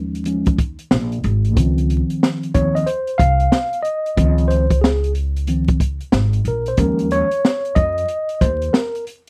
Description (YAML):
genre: hip hop, jazz-hop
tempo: 92 BPM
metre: 4/4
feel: swing 65% on 16ths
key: Db major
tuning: A4 = 441 Hz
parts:
  - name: mellow tine electric piano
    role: accompaniment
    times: 0.0-9.0 s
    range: Eb3 to F5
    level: -22 LUFS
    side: equal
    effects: none
  - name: upright bass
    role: bass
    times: 0.0-8.7 s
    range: Ab1 to F2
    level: -22 LUFS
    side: equal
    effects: none
  - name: open jazz drum kit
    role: drums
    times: 0.1-9.3 s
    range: hi-hat, kick drum, snare drum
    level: -20 LUFS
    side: equal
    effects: none
room: light reverb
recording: dry, close 1970s-style studio recording, vinyl crackle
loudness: -18 LUFS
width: mono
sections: 0.0-9.3 A section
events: tine electric piano solo 0.0-9.3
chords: 0.0 Eb9sus4; 1.6 Dbmaj9; 6.8 Eb9sus4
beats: 0.26 0.91 | 1.56 2.21 2.87 3.52 | 4.17 4.82 5.47 6.13 | 6.78 7.43 8.08 8.74